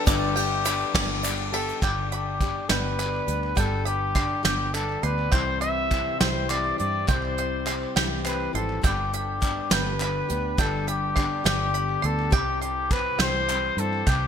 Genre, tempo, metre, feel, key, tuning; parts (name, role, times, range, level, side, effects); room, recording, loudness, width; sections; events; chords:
indie folk with a building arrangement; 68 BPM (dotted quarters); 6/8; straight; G major; A4 = 440 Hz
mellow trumpet; melody; 0.0-14.3 s; G4 to E5; -27 LUFS; left 2 dB; ping-pong delay
trombone with cup mute; second line; 0.0-1.5 s; D4; -38 LUFS; left 9 dB
bright baby grand piano; accompaniment; 0.0-1.8 s; G1 to G5; -37 LUFS; right 4 dB
picked plugged-in steel-string acoustic guitar; accompaniment; 0.0-14.3 s; G2 to G4; -34 LUFS; left 9 dB
dark brass ensemble; sustained chords; 0.0-1.8 s; G3 to B4; -39 LUFS; right 4 dB; stereo widening
bluegrass banjo; arpeggios; 0.0-14.3 s; D5 to C6; -33 LUFS; right 7 dB; ping-pong delay
fingered electric bass; bass; 0.1-14.3 s; G1 to G2; -30 LUFS; right 1 dB
soft brush drum kit; drums; 0.1-14.2 s; hi-hat, kick drum, ride cymbal, snare drum; -26 LUFS; right 1 dB; gated reverb
egg shaker; percussion; 0.1-1.8 s; -35 LUFS; right 15 dB
group handclap; percussion; 0.1-14.2 s; -36 LUFS; left 3 dB
fingerpicked plugged-in steel-string acoustic guitar; accompaniment; 1.8-14.3 s; G2 to E4; -34 LUFS; equal; lush chorus
light reverb; bright 1980s-style digital production; -22 LUFS; side -8 dB against mid
0.0-1.8 A section; 1.8-14.3 B section
grand piano fill 0.9-1.8
0.0 G; 5.3 C; 8.8 G; 12.3 C